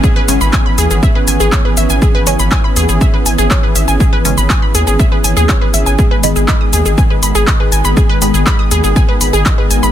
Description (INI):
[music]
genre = melodic techno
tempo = 121 BPM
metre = 4/4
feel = straight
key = unclear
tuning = A4 = 439 Hz
[part]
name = sweeping resonant pad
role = sustained chords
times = 0.0-9.9 s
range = D#3 to G#4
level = -19 LUFS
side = equal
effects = chorus, sidechain pumping
[part]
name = wide unison pluck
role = arpeggios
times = 0.0-9.9 s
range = G#4 to D#6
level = -17 LUFS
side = equal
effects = cassette tape, sidechain pumping, digital delay
[part]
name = electronic kick drum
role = drums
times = 0.0-9.6 s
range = none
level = -13 LUFS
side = equal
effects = none
[part]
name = techno drum kit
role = drums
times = 0.0-9.9 s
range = handclaps, hi-hat, shaker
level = -18 LUFS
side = left 1 dB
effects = sidechain pumping on perc, sidechain pumping on hats
[part]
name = filtered dub chord stab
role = stabs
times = 0.3-8.3 s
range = G#2 to C#4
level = -22 LUFS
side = equal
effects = phaser, sidechain pumping, digital delay
[part]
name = round analog bass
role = bass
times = 0.3-9.9 s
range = G#1 to D#2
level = -14 LUFS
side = equal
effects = sidechain pumping
[sound]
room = digital ambience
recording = dense, heavily limited modern master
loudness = -9 LUFS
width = side -11 dB against mid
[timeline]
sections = 0.0-9.9 A section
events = none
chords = 0.0 C#m7/G#; 6.0 G#m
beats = | 0.04 0.53 1.03 1.52 | 2.02 2.52 3.01 3.51 | 4.00 4.50 5.00 5.49 | 5.99 6.48 6.98 7.47 | 7.97 8.47 8.96 9.46